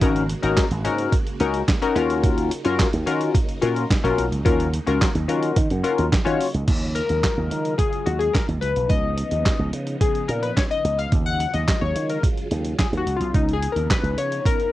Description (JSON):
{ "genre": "early-eighties boogie funk", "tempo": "108 BPM", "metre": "4/4", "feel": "straight", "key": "Eb minor", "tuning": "A4 = 440 Hz", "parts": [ { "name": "funky polysynth comp", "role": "accompaniment", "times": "0.0-14.7 s", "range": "Db4 to Gb5", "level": "-23 LUFS", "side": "left 5 dB", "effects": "chorus, cassette tape" }, { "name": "phased string machine", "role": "sustained chords", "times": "0.0-14.7 s", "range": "Db3 to Gb4", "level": "-33 LUFS", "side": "right 1 dB", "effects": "ensemble chorus, phaser, cassette tape" }, { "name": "slap bass with an envelope filter", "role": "bass", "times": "0.0-14.4 s", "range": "Ab1 to Eb3", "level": "-24 LUFS", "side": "right 1 dB", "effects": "none" }, { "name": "dusty soul sampler-style drum kit", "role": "drums", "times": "0.0-14.7 s", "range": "crash cymbal, handclaps, hi-hat, kick drum, snare drum", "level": "-22 LUFS", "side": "right 1 dB", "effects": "cassette tape" } ], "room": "light reverb", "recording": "home recording on cassette", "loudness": "-19 LUFS", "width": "side -15 dB against mid", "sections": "0.0-6.7 A section; 6.7-14.7 B section", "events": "analog polysynth solo 6.7-14.7", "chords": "0.0 Ab9sus4; 2.0 Ebm7; 6.7 Ebm11; 8.6 Db9; 11.1 Ebm11; 13.1 Db9", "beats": "| 0.01 0.57 1.12 1.68 | 2.24 2.79 3.35 3.90 | 4.46 5.01 5.57 6.12 | 6.68 7.24 7.79 8.35 | 8.90 9.46 10.01 10.57 | 11.12 11.68 12.24 12.79 | 13.35 13.90 14.46" }